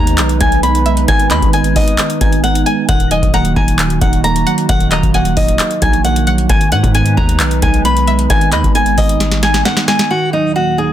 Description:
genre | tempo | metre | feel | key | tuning
hip hop, trap | 133 BPM | 4/4 | half-time | unclear | A4 = 440 Hz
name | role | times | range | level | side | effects
flamenco guitar | melody | 0.0-10.9 s | Eb4 to Cb6 | -16 LUFS | left 1 dB | ping-pong delay
string-like resonator pluck | second line | 0.0-10.1 s | Eb5 to Bb5 | -23 LUFS | left 1 dB | chorus, phaser, ping-pong delay
mellow tine electric piano | accompaniment | 0.0-10.9 s | Eb3 to Eb4 | -18 LUFS | right 7 dB | phaser
warbly tape-like pad | sustained chords | 0.0-10.9 s | Eb2 to Cb5 | -22 LUFS | equal | chorus, built-in reverb
hard-hitting 808-style bass | bass | 0.0-9.6 s | Eb1 to Ab2 | -16 LUFS | equal | none
booming analog drum machine | drums | 0.1-10.1 s | handclaps, hi-hat, kick drum, snare drum | -15 LUFS | equal | none
room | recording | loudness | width
little or no reverb | dense, heavily limited modern master | -10 LUFS | side -11 dB against mid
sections
0.0-10.1 A section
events
drum fill 9.2-10.1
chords
0.0 Abm; 2.9 Ebm; 6.5 Abm; 10.1 Ebm

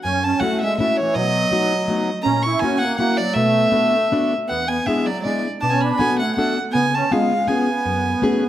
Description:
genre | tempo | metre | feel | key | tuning
musette waltz | 162 BPM | 3/4 | swing 54% on 8ths | F# minor | A4 = 440 Hz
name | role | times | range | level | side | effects
warm violin | melody | 0.0-8.5 s | C#5 to C#6 | -20 LUFS | equal | none
musette accordion | second line | 0.0-8.5 s | E3 to E4 | -22 LUFS | right 3 dB | none
picked plugged-in steel-string acoustic guitar | accompaniment | 0.0-8.4 s | E2 to A4 | -22 LUFS | left 3 dB | none
room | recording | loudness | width
wet recital hall reverb, RT60 1.3 s | none | -17 LUFS | side -12 dB against mid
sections
0.0-8.5 A section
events
none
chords
0.0 F#m7; 1.2 B7; 2.3 F#7/A#; 3.4 Bm7; 4.5 E7; 5.6 Bm7; 6.7 C#7; 7.9 F#madd9

